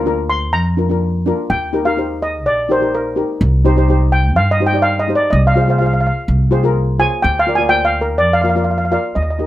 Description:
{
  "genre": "calypso",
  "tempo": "125 BPM",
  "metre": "4/4",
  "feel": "straight",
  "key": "unclear",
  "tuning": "A4 = 440 Hz",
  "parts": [
    { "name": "upright bass", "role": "bass", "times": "0.0-9.5 s", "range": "Bb1 to G2", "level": "-16 LUFS", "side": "equal", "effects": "none" },
    { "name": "steel pan", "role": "accompaniment", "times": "0.1-9.5 s", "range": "D4 to F5", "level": "-19 LUFS", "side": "left 2 dB", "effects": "none" },
    { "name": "steel pan", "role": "melody", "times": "0.3-9.4 s", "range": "Bb4 to C6", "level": "-16 LUFS", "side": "equal", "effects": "none" }
  ],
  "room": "light reverb",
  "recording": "none",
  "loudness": "-13 LUFS",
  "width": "side -14 dB against mid",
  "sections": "0.0-9.2 A section",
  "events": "steel pan solo 0.0-9.2",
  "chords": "0.0 Bb/D; 1.5 Eb; 3.4 Cm; 5.3 Fm/C; 7.2 Bb/D"
}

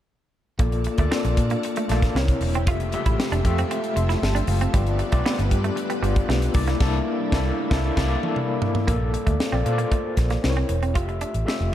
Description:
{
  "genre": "polished 1980s jazz-funk pop",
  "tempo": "116 BPM",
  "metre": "4/4",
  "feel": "straight",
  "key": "unclear",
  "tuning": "A4 = 439 Hz",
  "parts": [
    { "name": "overdriven tine electric piano", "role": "accompaniment", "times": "0.6-11.7 s", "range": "Ab3 to C6", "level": "-26 LUFS", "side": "left 3 dB", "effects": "fast tremolo, lush chorus" },
    { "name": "soft additive organ-like pad", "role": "sustained chords", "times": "0.6-8.9 s", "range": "C3 to E5", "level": "-32 LUFS", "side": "equal", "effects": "ensemble chorus, built-in reverb" },
    { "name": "clean electric guitar", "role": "riff", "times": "0.6-11.5 s", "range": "G3 to F4", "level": "-31 LUFS", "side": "right 7 dB", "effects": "lush chorus" },
    { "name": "vintage muted fingered electric bass", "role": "bass", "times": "0.6-11.7 s", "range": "E1 to Bb2", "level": "-24 LUFS", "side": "equal", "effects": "none" },
    { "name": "crisp fusion drum kit", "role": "drums", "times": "0.6-11.6 s", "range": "crash cymbal, hi-hat, kick drum, snare drum, toms", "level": "-25 LUFS", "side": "equal", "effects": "none" }
  ],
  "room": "light reverb, small room ambience",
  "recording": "dark, warm production",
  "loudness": "-20 LUFS",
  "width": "side -12 dB against mid",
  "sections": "0.6-8.9 A section; 8.9-11.7 B section",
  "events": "tine electric piano fill 3.7-4.7; band accent 6.8-8.9; drum fill 7.8-8.9",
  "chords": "0.6 Bbmaj7; 2.1 C7b9; 2.7 Fmaj9; 4.7 G7; 6.5 C13; 8.9 Bbmaj7; 10.4 C7b9; 11.0 Fmaj9"
}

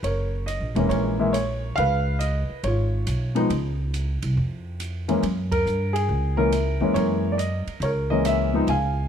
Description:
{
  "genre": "jazz piano trio",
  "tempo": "139 BPM",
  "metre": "4/4",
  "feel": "swing 66% on 8ths",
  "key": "unclear",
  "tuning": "A4 = 438 Hz",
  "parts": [
    { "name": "warm baby grand piano", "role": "melody", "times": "0.0-9.1 s", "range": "Fb3 to Ab5", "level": "-23 LUFS", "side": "left 1 dB", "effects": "plate reverb" },
    { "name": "upright bass", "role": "bass", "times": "0.0-9.1 s", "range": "Fb1 to G2", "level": "-25 LUFS", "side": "right 1 dB", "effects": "none" },
    { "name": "open jazz drum kit", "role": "drums", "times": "0.0-8.8 s", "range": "hi-hat, kick drum, ride cymbal", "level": "-37 LUFS", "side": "right 4 dB", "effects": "none" }
  ],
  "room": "moderate studio reverb, RT60 0.8 s",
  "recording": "dark, warm production",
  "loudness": "-21 LUFS",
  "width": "side -8 dB against mid",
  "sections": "0.0-9.1 A section",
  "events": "band accent 5.4",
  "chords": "0.0 Gb7; 1.8 Db7; 5.2 Gb7"
}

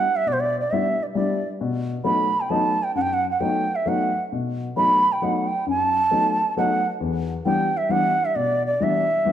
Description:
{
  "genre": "musette waltz",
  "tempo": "134 BPM",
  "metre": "3/4",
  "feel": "straight",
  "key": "E minor",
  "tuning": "A4 = 438 Hz",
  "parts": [
    { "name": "bansuri", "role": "melody", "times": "0.0-9.3 s", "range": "C5 to B5", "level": "-21 LUFS", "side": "right 2 dB", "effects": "none" },
    { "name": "dark upright piano", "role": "accompaniment", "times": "0.0-9.3 s", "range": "E2 to E4", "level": "-24 LUFS", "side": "left 4 dB", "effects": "none" }
  ],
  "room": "moderate recital hall reverb, RT60 1.8 s",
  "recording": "none",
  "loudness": "-20 LUFS",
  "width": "side -10 dB against mid",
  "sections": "0.0-9.3 A section",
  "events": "none",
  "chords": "0.0 Em7; 1.6 B7; 7.0 Em7"
}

